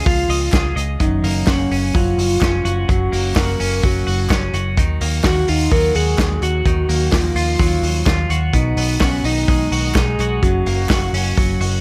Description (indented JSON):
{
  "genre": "jangly indie pop",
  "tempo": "127 BPM",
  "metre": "4/4",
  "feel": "straight",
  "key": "F# major",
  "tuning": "A4 = 440 Hz",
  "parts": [
    { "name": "soft octave-layered synth lead", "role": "melody", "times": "0.0-11.8 s", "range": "C#4 to A#4", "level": "-24 LUFS", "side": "equal", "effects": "chorus, phaser, digital delay" },
    { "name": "twelve-string electric guitar", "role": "arpeggios", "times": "0.0-11.8 s", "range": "F#2 to D#5", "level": "-26 LUFS", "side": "equal", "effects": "none" },
    { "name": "vintage muted fingered electric bass", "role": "bass", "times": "0.1-11.8 s", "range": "F#1 to D#2", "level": "-22 LUFS", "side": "equal", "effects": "none" },
    { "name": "vintage drum kit", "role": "drums", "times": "0.1-11.7 s", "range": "hi-hat, kick drum, snare drum", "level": "-22 LUFS", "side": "equal", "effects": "none" },
    { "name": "group handclap", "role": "percussion", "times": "0.5-11.0 s", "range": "none", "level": "-36 LUFS", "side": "equal", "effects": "none" }
  ],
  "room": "little or no reverb",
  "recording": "none",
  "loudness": "-17 LUFS",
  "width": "mono",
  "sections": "0.0-11.8 A section",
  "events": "none",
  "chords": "0.0 C#add9; 1.0 F#; 4.8 D#madd9; 8.5 B6; 10.4 F#"
}